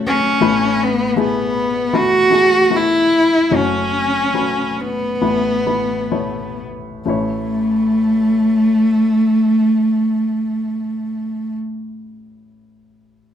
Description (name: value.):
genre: pop.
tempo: 61-80 BPM.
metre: 4/4.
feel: straight.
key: A major.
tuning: A4 = 440 Hz.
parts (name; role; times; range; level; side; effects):
warm baby grand piano; accompaniment; 0.0-13.3 s; F#1 to C#5; -21 LUFS; left 4 dB; none.
warm cello; melody; 0.1-11.5 s; A3 to F#4; -15 LUFS; equal; none.
room: moderate studio reverb, RT60 0.7 s.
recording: band playing live in one room.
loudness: -14 LUFS.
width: side -9 dB against mid.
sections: 0.0-7.1 A section; 7.1-11.0 B section.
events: slowing down 0.4-7.1.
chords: 0.4 Asus2; 3.5 F#m; 5.2 Asus2; 7.1 A.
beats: | 0.41 1.17 1.93 2.71 | 3.51 4.34 5.21 6.12 | 7.08 8.07 9.06 10.05.